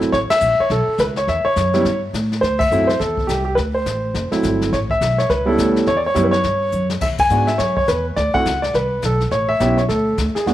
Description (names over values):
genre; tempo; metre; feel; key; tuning
jazz piano trio; 209 BPM; 4/4; swing 61% on 8ths; A mixolydian; A4 = 437 Hz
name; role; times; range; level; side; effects
warm grand piano; melody; 0.0-10.5 s; F#3 to G#5; -17 LUFS; equal; none
upright bass; bass; 0.0-10.5 s; F#1 to A2; -22 LUFS; equal; none
jazz brush drum kit; drums; 0.0-10.5 s; brushed snare drum, crash cymbal, hi-hat, kick drum, ride cymbal, snare drum; -27 LUFS; left 3 dB; none
room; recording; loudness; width
light reverb, studio ambience; 1960s-style stereo; -16 LUFS; side -13 dB against mid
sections
0.0-10.5 A section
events
band accent 0.3, 2.6, 7.2; drum fill 6.7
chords
0.1 A9; 2.4 D9; 4.7 A9; 7.0 Eadd9; 8.2 D7; 9.3 A9; 9.9 D5